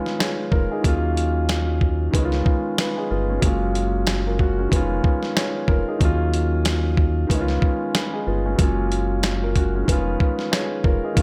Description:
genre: hip hop, boom-bap hip-hop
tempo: 93 BPM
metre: 4/4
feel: swing 57% on 16ths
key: unclear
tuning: A4 = 440 Hz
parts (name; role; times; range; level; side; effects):
- dark baby grand piano; accompaniment; 0.0-11.2 s; Eb3 to Db5; -26 LUFS; equal; cassette tape, high-pass filter, low-pass filter
- dusty soul sampler-style drum kit; drums; 0.1-11.2 s; hi-hat, kick drum, snare drum; -23 LUFS; equal; none
- round analog bass; bass; 0.5-11.2 s; F1 to Eb2; -26 LUFS; equal; none
room: little or no reverb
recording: none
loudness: -21 LUFS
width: mono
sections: 0.0-11.2 A section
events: none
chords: 0.0 Db7; 0.8 Ebm7; 2.1 Db7; 3.4 Gbmaj7; 4.7 Db7/F; 6.0 Ebm7; 7.3 Db7; 8.6 Gbmaj7; 9.9 Db7/F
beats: 0.20 | 0.84 1.49 2.13 2.78 | 3.43 4.07 4.72 5.36 | 6.01 6.65 7.30 7.94 | 8.59 9.23 9.88 10.52 | 11.17

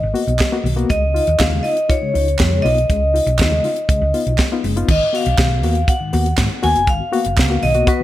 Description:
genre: disco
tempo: 120 BPM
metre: 4/4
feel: straight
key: G# dorian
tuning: A4 = 440 Hz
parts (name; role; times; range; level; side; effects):
- vibraphone with medium hard mallets; melody; 0.0-8.0 s; B4 to G#5; -19 LUFS; equal; none
- reed electric piano; accompaniment; 0.0-8.0 s; G#2 to F#4; -22 LUFS; left 5 dB; fast tremolo
- hollow-body short-scale fingered electric bass; bass; 0.0-7.8 s; F#1 to G#2; -19 LUFS; right 1 dB; none
- tight funk drum kit; drums; 0.2-8.0 s; crash cymbal, hi-hat, kick drum, snare drum; -19 LUFS; equal; gated reverb
- group handclap; percussion; 0.4-7.5 s; none; -27 LUFS; right 8 dB; none
room: studio reverb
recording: none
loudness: -14 LUFS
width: side -14 dB against mid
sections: 0.0-4.9 A section; 4.9-8.0 B section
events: none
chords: 0.0 G#m9; 0.9 C#9; 4.9 G#m9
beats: 0.40 | 0.90 1.40 1.89 2.39 | 2.89 3.39 3.89 4.39 | 4.88 5.38 5.88 6.38 | 6.88 7.37 7.87

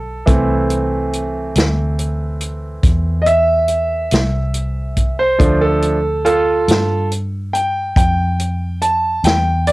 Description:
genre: slow blues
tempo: 47 BPM (dotted quarters)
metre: 12/8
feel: straight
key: A minor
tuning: A4 = 440 Hz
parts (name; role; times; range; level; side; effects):
- bright concert grand piano; accompaniment; 0.0-9.7 s; E3 to A5; -17 LUFS; right 1 dB; cassette tape
- vintage muted fingered electric bass; bass; 0.0-9.7 s; B1 to G2; -19 LUFS; equal; none
- vintage drum kit; drums; 0.3-9.7 s; hi-hat, kick drum, snare drum; -16 LUFS; equal; cassette tape
room: light reverb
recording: home recording on cassette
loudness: -14 LUFS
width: side -20 dB against mid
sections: 0.0-9.7 A section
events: grand piano solo 0.0-9.7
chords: 0.0 Am; 5.4 Dm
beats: | 0.28 1.56 2.84 4.12 | 5.40 6.68 7.96 9.25

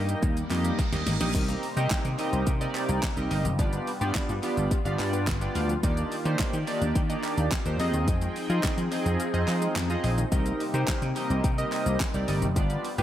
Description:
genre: dance-pop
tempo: 107 BPM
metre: 4/4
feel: straight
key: C minor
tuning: A4 = 440 Hz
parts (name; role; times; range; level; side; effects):
- chorused polysynth; accompaniment; 0.0-13.0 s; Bb3 to Eb5; -30 LUFS; right 1 dB; sidechain pumping
- lush unison pad; sustained chords; 0.0-13.0 s; C3 to G5; -34 LUFS; left 1 dB; chorus, phaser, sidechain pumping
- vintage slap bass; bass; 0.0-13.0 s; F1 to F3; -28 LUFS; equal; sidechain pumping
- pop drum kit; drums; 0.1-13.0 s; crash cymbal, handclaps, hi-hat, kick drum, shaker, snare drum; -30 LUFS; equal; dub echo
- reverse cymbal; sound effects; 0.5-1.3 s; none; -38 LUFS; right 4 dB; none
- tight sequenced synth; arpeggios; 1.3-13.0 s; Eb3 to F5; -38 LUFS; left 3 dB; chorus, sidechain pumping, dub echo
room: light reverb, digital ambience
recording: echo-heavy mix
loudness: -24 LUFS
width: side -12 dB against mid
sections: 0.0-1.3 A section; 1.3-13.0 B section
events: reverse cymbal 0.5-1.3; drum fill 0.8-1.3; kick muted 9.2-10.3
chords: 0.0 Eb; 1.3 Cm7; 3.6 G7; 5.8 Ebmaj7; 7.8 Fm7; 10.3 Cm7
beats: 0.23 0.79 | 1.35 1.91 2.47 3.03 | 3.59 4.15 4.71 5.27 | 5.83 6.39 6.96 7.52 | 8.08 8.64 9.20 9.76 | 10.32 10.88 11.44 12.00 | 12.56

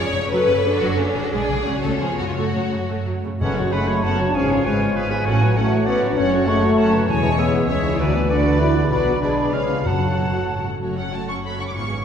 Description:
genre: classical, dramatic, fast romantic movement for symphony orchestra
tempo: 169-200 BPM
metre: 3/4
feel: rubato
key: F# minor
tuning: A4 = 440 Hz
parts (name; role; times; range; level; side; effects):
- rich symphonic violin section; melody; 0.0-12.0 s; C#5 to D6; -31 LUFS; left 2 dB; none
- rich symphonic violin section; second line; 0.0-12.0 s; C#4 to F#5; -27 LUFS; left 3 dB; none
- warm symphonic viola section; accompaniment; 0.0-12.0 s; C#3 to A4; -28 LUFS; right 2 dB; none
- concert harp; arpeggios; 0.0-12.0 s; E#2 to C#6; -27 LUFS; left 5 dB; none
- rich symphonic cello section; bass; 0.0-12.0 s; C#2 to D4; -27 LUFS; right 2 dB; none
- rich symphonic double bass section; bass; 0.0-12.0 s; E1 to F#2; -26 LUFS; right 2 dB; none
- clear oboe; second line; 3.4-10.7 s; B4 to F#5; -30 LUFS; right 1 dB; none
- mellow clarinet; second line; 3.4-10.6 s; G#4 to C#5; -30 LUFS; left 1 dB; none
- silver concert flute; second line; 3.4-10.7 s; E5 to C#6; -28 LUFS; equal; none
- mellow bassoon; accompaniment; 3.4-10.7 s; D3 to A3; -29 LUFS; equal; none
- timpani; percussion; 3.4-3.8, 9.9-10.3 s; F#2; -28 LUFS; equal; none
- mellow French horn section; sustained chords; 3.6-10.6 s; F#3 to G#4; -21 LUFS; equal; none
room: wet scoring stage reverb, RT60 1.8 s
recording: heard from further back in the room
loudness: -17 LUFS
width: side -8 dB against mid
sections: 0.0-3.4 A section; 3.4-10.8 B section; 10.8-12.0 B section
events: none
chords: 0.3 F#m; 1.3 G#dim/B; 1.7 F#m/C#; 2.0 C#; 2.4 F#m; 4.3 C#7/G#; 5.3 F#m/A; 6.2 F#m; 7.1 C#m/E; 8.0 Bm/D; 8.9 Bm; 9.2 G#dim/B; 9.5 C#7; 9.8 F#m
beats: | 0.30 0.64 0.98 | 1.32 1.66 2.01 | 2.36 2.71 3.06 | 3.41 3.72 4.03 | 4.34 4.65 4.96 | 5.26 5.57 5.87 | 6.17 6.48 6.78 | 7.08 7.38 7.68 | 7.99 8.29 8.60 | 8.90 9.21 9.53 | 9.85 10.18 10.50 | 10.82 11.13 11.44 | 11.75

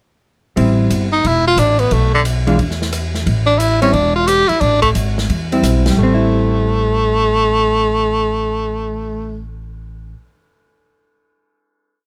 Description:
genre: jazz, small-group swing and bop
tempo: 178 BPM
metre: 4/4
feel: swing 65% on 8ths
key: A minor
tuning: A4 = 438 Hz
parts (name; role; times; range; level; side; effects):
- vintage hollow-body jazz guitar; accompaniment; 0.6-10.3 s; E3 to F4; -19 LUFS; equal; none
- upright bass; bass; 0.6-10.1 s; E1 to E2; -20 LUFS; equal; none
- open jazz drum kit; drums; 0.6-5.9 s; hi-hat, kick drum, ride cymbal, rim click, snare drum; -27 LUFS; equal; none
- bright tenor saxophone; melody; 1.1-9.4 s; D3 to G4; -17 LUFS; equal; none
room: moderate booth ambience, RT60 0.2 s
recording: none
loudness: -15 LUFS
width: mono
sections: 0.6-6.0 A section; 6.0-8.7 final chord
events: none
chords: 0.6 Am7; 1.9 Bdim; 2.6 N.C.; 3.3 Am7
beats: | 0.57 0.90 1.24 1.58 | 1.91 2.25 2.58 2.92 | 3.26 3.60 3.93 4.27 | 4.61 4.95 5.29 5.62 | 5.96 6.30 6.64 6.98 | 7.31 7.65 7.99 8.32

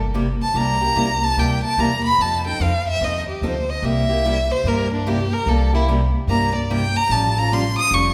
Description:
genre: acoustic string swing (jazz manouche)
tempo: 147 BPM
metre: 4/4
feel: swing 63% on 8ths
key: C mixolydian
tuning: A4 = 440 Hz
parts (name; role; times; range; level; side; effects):
- upright bass; bass; 0.0-8.1 s; E#1 to G2; -25 LUFS; equal; none
- picked steel-string acoustic guitar; accompaniment; 0.1-8.1 s; C3 to A4; -26 LUFS; equal; none
- warm violin; melody; 0.4-8.1 s; D4 to Eb6; -23 LUFS; equal; none
room: wet recital hall reverb, RT60 1.8 s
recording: recorded in a church or concert hall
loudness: -20 LUFS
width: mono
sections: 0.0-8.1 A section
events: violin solo 0.0-8.1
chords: 0.0 C7; 2.2 F7; 3.8 C7; 7.1 Aaug7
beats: 0.15 | 0.56 0.96 1.37 1.78 | 2.19 2.60 3.01 3.42 | 3.83 4.24 4.65 5.06 | 5.47 5.88 6.29 6.70 | 7.10 7.51 7.92

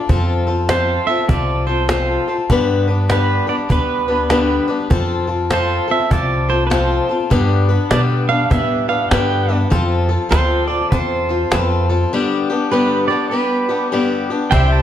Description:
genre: honky-tonk and classic country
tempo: 100 BPM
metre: 4/4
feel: swing 63% on 8ths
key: unclear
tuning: A4 = 440 Hz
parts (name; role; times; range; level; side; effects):
- picked swing-style acoustic guitar; accompaniment; 0.0-14.8 s; G2 to B4; -18 LUFS; left 4 dB; none
- upright bass; bass; 0.1-14.8 s; C2 to B2; -19 LUFS; equal; none
- cajon; drums; 0.1-14.7 s; none; -20 LUFS; right 1 dB; none
- pedal steel guitar; second line; 0.7-14.8 s; B4 to A5; -20 LUFS; right 5 dB; none
- muted studio violin section; sustained chords; 14.5-14.8 s; C4 to E5; -29 LUFS; equal; none
- pedal steel guitar; sustained chords; 14.5-14.8 s; C5 to G5; -24 LUFS; equal; none
room: moderate recital hall reverb, RT60 1.3 s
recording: dark, warm production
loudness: -14 LUFS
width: side -10 dB against mid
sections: 0.0-14.5 A section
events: pedal steel guitar solo 0.0-14.5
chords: 0.1 F; 2.5 G; 4.9 F; 7.3 G; 9.7 F; 12.1 G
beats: | 0.10 0.70 1.30 1.90 | 2.50 3.10 3.71 4.31 | 4.91 5.51 6.11 6.71 | 7.31 7.91 8.51 9.11 | 9.71 10.32 10.92 11.52 | 12.12 12.72 13.32 13.92 | 14.52

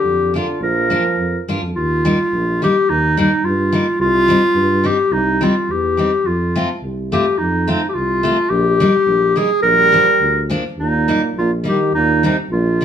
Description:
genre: alpine folk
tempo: 106 BPM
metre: 2/4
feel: swing 53% on 8ths, rubato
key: Eb major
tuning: A4 = 438 Hz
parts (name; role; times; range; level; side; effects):
- warm clarinet; melody; 0.0-12.8 s; Eb4 to Bb4; -15 LUFS; left 1 dB; none
- warm euphonium; second line; 0.0-1.5, 9.6-12.8 s; Bb2 to G3; -22 LUFS; right 4 dB; none
- mellow tuba; bass; 0.0-12.8 s; Bb1 to G2; -22 LUFS; equal; none
- picked steel-string acoustic guitar; accompaniment; 0.3-12.8 s; F3 to F4; -20 LUFS; left 1 dB; none
room: wet studio reverb, RT60 0.7 s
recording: band playing live in one room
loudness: -14 LUFS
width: side -9 dB against mid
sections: 0.0-1.8 A section; 1.8-12.8 B section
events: none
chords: 0.0 Bb; 1.8 Ebadd9; 4.0 Cm; 6.2 F; 8.5 Eb/Bb; 9.6 Bb6; 10.8 Eb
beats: 0.04 | 0.60 1.18 | 1.75 2.33 | 2.89 3.45 | 4.00 4.55 | 5.11 5.68 | 6.25 6.82 | 7.39 7.95 | 8.51 9.07 | 9.63 10.20 | 10.78 11.35 | 11.92 12.49

